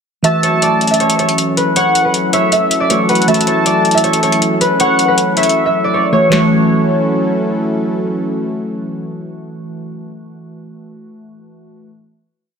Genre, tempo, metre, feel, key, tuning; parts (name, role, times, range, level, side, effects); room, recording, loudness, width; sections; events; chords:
hip hop, trap; 158 BPM; 4/4; half-time; F# minor; A4 = 436 Hz
concert harp; melody; 0.2-8.2 s; B4 to E5; -15 LUFS; right 2 dB; digital delay
warm velvety synth lead; second line; 0.2-7.4 s; C#5 to A5; -18 LUFS; left 2 dB; chorus, digital delay
glassy digital keys; accompaniment; 0.2-11.9 s; E3 to F#4; -18 LUFS; right 1 dB; chorus
warm analog pad; sustained chords; 0.2-10.1 s; F#3 to A4; -20 LUFS; left 1 dB; chorus
booming analog drum machine; drums; 0.2-6.4 s; hi-hat, snare drum; -18 LUFS; left 2 dB
light reverb; -11 LUFS; side -6 dB against mid
0.2-6.3 breakdown; 6.3-9.4 final chord
drums muted 5.6-6.3
0.2 F#m7